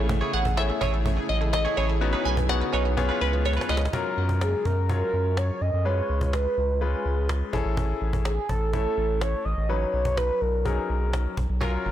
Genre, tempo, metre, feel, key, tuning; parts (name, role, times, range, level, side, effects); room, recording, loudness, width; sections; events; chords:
dance-pop; 125 BPM; 4/4; straight; A4 = 438 Hz
clear concert grand piano; accompaniment; 0.0-11.9 s; F#3 to C#5; -31 LUFS; left 5 dB
granular cloud pad; sustained chords; 0.0-3.9 s; C#3 to G#4; -35 LUFS; right 1 dB; built-in reverb
wide unison pluck; arpeggios; 0.0-3.9 s; A3 to B4; -37 LUFS; right 3 dB; phaser, ping-pong delay
saturated sub bass; bass; 0.0-11.9 s; F#1 to F#2; -25 LUFS; equal
direct-recorded clean electric guitar; riff; 0.1-3.9, 11.6-11.9 s; C#4 to C#5; -33 LUFS; right 5 dB; lush chorus
cajon; drums; 0.1-11.7 s; -33 LUFS; right 1 dB
glassy wavetable pluck; melody; 0.3-3.8 s; B4 to G#5; -29 LUFS; right 1 dB; chorus, ping-pong delay
mellow horn-like synth lead; melody; 4.4-11.1 s; G#4 to D#5; -28 LUFS; right 1 dB; chorus
light reverb; blown-out, overdriven recording, overdrive; -23 LUFS; side -11 dB against mid
0.0-3.9 A section; 3.9-11.9 B section
drop 0.0-3.9; drum fill 3.5-3.9
0.0 Amaj7; 2.0 Badd9; 3.0 C#7; 3.9 F#maj7; 5.9 C#7; 7.5 Amaj7; 9.7 Badd9